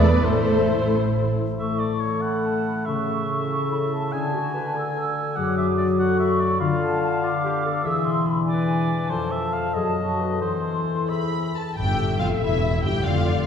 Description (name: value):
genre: classical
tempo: 87-99 BPM (dotted quarters)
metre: 6/8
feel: rubato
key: A major, A minor from 6.6 s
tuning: A4 = 441 Hz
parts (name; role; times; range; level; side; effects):
- dark symphonic violin section; melody; 0.0-1.4, 11.1-13.5 s; C5 to B5; -30 LUFS; left 3 dB; none
- mellow hollow large flute ensemble; second line; 0.0-11.6 s; E5 to E6; -29 LUFS; equal; none
- warm clarinet; second line; 0.0-11.6 s; F4 to B4; -31 LUFS; left 1 dB; none
- warm oboe; second line; 0.0-11.6 s; C5 to G#5; -30 LUFS; equal; none
- warm symphonic violin section; second line; 0.0-0.9, 11.8-13.5 s; E4 to B4; -32 LUFS; left 1 dB; none
- dark symphonic viola section; accompaniment; 0.0-1.4, 11.8-13.5 s; E4 to E5; -30 LUFS; right 1 dB; none
- warm French horn section; sustained chords; 0.0-11.5 s; C#3 to D5; -25 LUFS; left 1 dB; none
- concert harp; arpeggios; 0.0-13.5 s; E2 to D5; -28 LUFS; left 5 dB; none
- dark symphonic cello section; bass; 0.0-0.9, 11.8-13.5 s; E2 to B3; -27 LUFS; right 1 dB; none
- rich symphonic double bass section; bass; 0.0-1.4, 11.8-13.5 s; E1 to E2; -23 LUFS; right 2 dB; none
room: wet scoring stage reverb, RT60 2.0 s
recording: heard from further back in the room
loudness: -20 LUFS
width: side -7 dB against mid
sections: 0.0-1.6 A section; 1.6-11.8 B section; 11.8-13.5 C section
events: none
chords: 0.2 Am; 1.6 A; 2.9 A/C#; 4.1 D; 5.4 D/F#; 6.6 Bm7b5/D; 7.8 E7b9; 9.1 F6; 9.8 B7/F#; 10.4 Am/E; 11.1 E; 11.8 A7